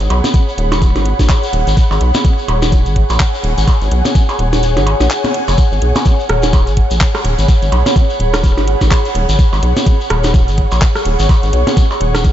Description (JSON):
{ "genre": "minimal techno", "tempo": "126 BPM", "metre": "4/4", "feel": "swing 58% on 16ths", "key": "G# minor", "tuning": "A4 = 440 Hz", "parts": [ { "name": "rubbery square bass", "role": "bass", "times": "0.0-12.3 s", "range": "D#1 to B1", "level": "-14 LUFS", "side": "equal", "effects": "sidechain pumping" }, { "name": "garage drum kit", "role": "drums", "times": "0.0-12.3 s", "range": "handclaps, hi-hat", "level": "-26 LUFS", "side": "left 1 dB", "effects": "none" }, { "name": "shekere", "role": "percussion", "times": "0.0-12.3 s", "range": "none", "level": "-25 LUFS", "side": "left 4 dB", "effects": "none" }, { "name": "ethereal airy pad", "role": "texture", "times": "0.0-12.3 s", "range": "G#4 to C#6", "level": "-18 LUFS", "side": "equal", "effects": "ensemble chorus, built-in reverb, sidechain pumping" }, { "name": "electronic percussion blips and rim click", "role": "percussion", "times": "0.1-12.2 s", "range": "none", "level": "-20 LUFS", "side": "right 1 dB", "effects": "ping-pong delay" }, { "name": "electronic kick drum", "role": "drums", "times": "0.3-12.3 s", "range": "none", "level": "-11 LUFS", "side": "equal", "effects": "none" } ], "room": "light reverb, digital ambience", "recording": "nothing above 7.7 kHz", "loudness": "-11 LUFS", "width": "side -11 dB against mid", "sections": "0.0-12.3 A section", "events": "kick drops out 4.6-5.6", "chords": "0.0 G#m7" }